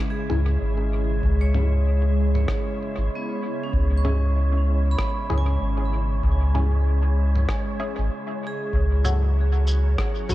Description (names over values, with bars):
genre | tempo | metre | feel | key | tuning
ambient dub | 96 BPM | 4/4 | swing 58% on 16ths | C# minor | A4 = 440 Hz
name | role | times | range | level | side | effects
soft additive organ-like pad | sustained chords | 0.0-10.3 s | C#3 to F#4 | -32 LUFS | left 1 dB | ensemble chorus, built-in reverb
vibraphone with hard mallets | arpeggios | 0.0-10.3 s | B3 to C#6 | -33 LUFS | right 4 dB | tape echo
wind-like tuned noise texture | texture | 0.0-10.3 s | C#5 | -36 LUFS | right 3 dB | built-in reverb
filtered dub chord stab | stabs | 0.3-10.3 s | C#4 to C#5 | -34 LUFS | left 3 dB | phaser, analog chorus, dub echo
warm sub bass | bass | 0.3-10.3 s | G#1 to C#2 | -20 LUFS | equal | none
lo-fi sampler-style drum kit | drums | 0.3-10.3 s | rim click, shaker, toms | -32 LUFS | equal | dub echo
electronic kick drum | drums | 1.2-10.1 s | none | -26 LUFS | equal | none
room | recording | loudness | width
little or no reverb | dark, warm production | -20 LUFS | side -16 dB against mid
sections
0.0-10.3 A section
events
none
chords
0.0 C#m; 8.7 F#m